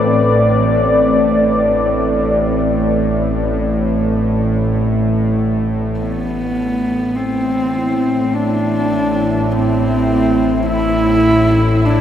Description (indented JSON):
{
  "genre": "dark ambient drone",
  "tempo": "free time",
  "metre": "none",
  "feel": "none",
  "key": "A minor",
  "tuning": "A4 = 440 Hz",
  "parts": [
    { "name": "dark analog pad", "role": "sustained chords", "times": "0.0-6.0 s", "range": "C4 to D5", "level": "-17 LUFS", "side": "left 1 dB", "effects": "chorus" },
    { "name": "bowed-like drone", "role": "drone", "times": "0.0-12.0 s", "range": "A1 to A2", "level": "-16 LUFS", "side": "equal", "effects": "built-in reverb" },
    { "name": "dark horsehead fiddle", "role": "melody", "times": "6.0-12.0 s", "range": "B3 to E4", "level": "-16 LUFS", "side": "equal", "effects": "diffuse ambient delay" },
    { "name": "bubbling stepped-filter texture", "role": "texture", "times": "6.0-12.0 s", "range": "E4", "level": "-22 LUFS", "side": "right 2 dB", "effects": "chorus, built-in reverb" }
  ],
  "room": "wet huge ambient reverb, RT60 9.0 s",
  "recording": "none",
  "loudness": "-13 LUFS",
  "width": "side -10 dB against mid",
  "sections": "0.0-6.0 A section; 6.0-12.0 B section",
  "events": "filter sweep on synth drone 6.0-12.0",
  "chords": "0.0 Amadd9; 6.0 Am"
}